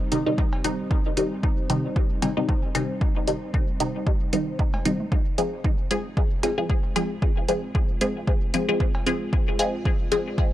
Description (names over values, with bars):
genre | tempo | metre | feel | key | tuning
dub techno | 114 BPM | 4/4 | swing 56% on 16ths | F dorian | A4 = 439 Hz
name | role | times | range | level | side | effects
dark analog pad | sustained chords | 0.0-10.5 s | G3 to D5 | -35 LUFS | equal | chorus, sidechain pumping
filtered dub chord stab | stabs | 0.1-10.3 s | C3 to Ab4 | -26 LUFS | left 1 dB | phaser, sidechain pumping, dub echo
electronic hi-hat | drums | 0.1-10.2 s | none | -31 LUFS | right 1 dB | none
electronic kick drum | drums | 0.4-10.5 s | none | -24 LUFS | equal | overdrive
cowbell and congas | percussion | 0.5-9.0 s | none | -38 LUFS | right 1 dB | sidechain pumping on perc, dub echo
room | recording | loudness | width
digital ambience | dry, gritty hardware recording, cassette tape | -22 LUFS | side -13 dB against mid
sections
0.0-10.5 A section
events
none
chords
0.0 Cm; 5.1 Fm